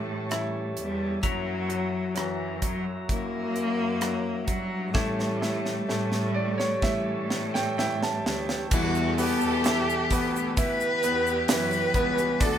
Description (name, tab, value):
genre	pop ballad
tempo	65 BPM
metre	4/4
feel	straight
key	unclear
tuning	A4 = 440 Hz
part	dark cello	melody	0.0-12.6 s	E3 to B4	-29 LUFS	equal	none
part	bright grand piano	accompaniment	0.0-12.6 s	E3 to A5	-31 LUFS	left 1 dB	none
part	percussive tonewheel organ	sustained chords	0.0-8.7 s	F#4 to A#5	-35 LUFS	equal	slow rotary speaker
part	nylon-string guitar	arpeggios	0.0-12.6 s	E2 to F#4	-36 LUFS	left 5 dB	none
part	clear studio cello section	bass	0.0-12.6 s	C#2 to A2	-33 LUFS	right 1 dB	none
part	modern studio drum kit	drums	0.3-12.6 s	crash cymbal, hi-hat, kick drum, rim click, snare drum	-29 LUFS	right 1 dB	none
part	warm studio violin section	second line	8.7-12.6 s	F#4 to A4	-33 LUFS	equal	none
part	egg shaker	percussion	8.7-12.6 s	none	-39 LUFS	right 7 dB	none
room	light reverb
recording	band playing live in one room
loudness	-24 LUFS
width	side -9 dB against mid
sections	0.0-8.7 A section; 8.7-12.6 B section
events	drum fill 4.9-8.7; grand piano fill 5.9-8.7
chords	0.0 A7; 1.2 F#7; 4.9 A7; 8.7 Em